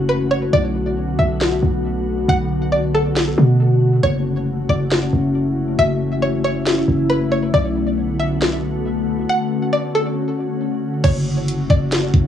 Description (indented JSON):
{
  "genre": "hip hop, atmospheric cloud-rap",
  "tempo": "137 BPM",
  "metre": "4/4",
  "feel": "half-time",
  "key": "F# minor",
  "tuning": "A4 = 440 Hz",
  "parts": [
    { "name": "glassy FM pad", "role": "sustained chords", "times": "0.0-12.3 s", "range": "D3 to F#4", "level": "-20 LUFS", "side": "left 2 dB", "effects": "ensemble chorus, built-in reverb, sidechain pumping, cassette tape" },
    { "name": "warm 808-style bass", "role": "bass", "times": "0.0-12.3 s", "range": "F#1 to B2", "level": "-20 LUFS", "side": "equal", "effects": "none" },
    { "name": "string-like resonator pluck", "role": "melody", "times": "0.1-11.9 s", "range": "A4 to F#5", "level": "-21 LUFS", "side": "equal", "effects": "chorus, cassette tape, tape echo" },
    { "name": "trap drum kit", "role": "drums", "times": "1.4-12.2 s", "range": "crash cymbal, hi-hat, kick drum, snare drum", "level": "-18 LUFS", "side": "equal", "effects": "cassette tape" }
  ],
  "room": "moderate digital room reverb, RT60 1.1 s",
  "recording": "home recording on cassette",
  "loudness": "-16 LUFS",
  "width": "side -9 dB against mid",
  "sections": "0.0-11.0 A section; 11.0-12.3 B section",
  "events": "break 0.0-4.0, 10.2-11.0",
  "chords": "0.0 F#m7; 0.5 Bm7; 4.0 F#m7; 7.5 Bm7; 11.0 F#m7",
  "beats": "0.09 | 0.53 0.97 1.41 1.84 | 2.28 2.72 3.16 3.60 | 4.04 4.47 4.91 5.35 | 5.79 6.22 6.66 7.10 | 7.54 7.98 8.41 8.85 | 9.29 9.73 10.17 10.60 | 11.04 11.48 11.92"
}